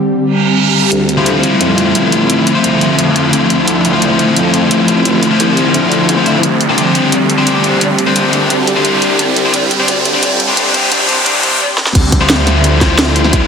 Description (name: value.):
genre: dark technical drum and bass.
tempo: 174 BPM.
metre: 4/4.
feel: straight.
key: D minor.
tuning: A4 = 440 Hz.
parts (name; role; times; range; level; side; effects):
swarming drone; sustained chords; 0.0-13.5 s; D3 to G4; -14 LUFS; equal; built-in reverb, sidechain pumping.
reverse cymbal and riser; sound effects; 0.3-11.6 s; none; -19 LUFS; right 2 dB; none.
phased detuned saw bass; bass; 0.9-13.5 s; G1 to F2; -18 LUFS; equal; phaser, tube saturation, sidechain pumping, high-pass filter.
drum and bass drum kit; drums; 0.9-13.4 s; crash cymbal, hi-hat, snare drum; -15 LUFS; right 1 dB; none.
thick fuzz guitar; stabs; 1.2-13.5 s; D4 to C5; -13 LUFS; left 2 dB; distortion, tape echo.
electronic kick drum; drums; 12.0-13.4 s; none; -12 LUFS; equal; none.
room: moderate lush hall reverb, RT60 1.7 s, digital ambience.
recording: dense, heavily limited modern master, high-pass filter.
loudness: -9 LUFS.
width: side -6 dB against mid.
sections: 0.9-12.0 A section; 12.0-13.5 B section.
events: reverse cymbal 0.3-0.9; build-up 0.9-12.0; riser 0.9-11.6; filter sweep 0.9-12.0; drum fill 11.8; drop 12.0-13.5.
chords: 0.0 Csus2; 0.9 Dm7; 6.4 Csus2; 12.0 Dm7.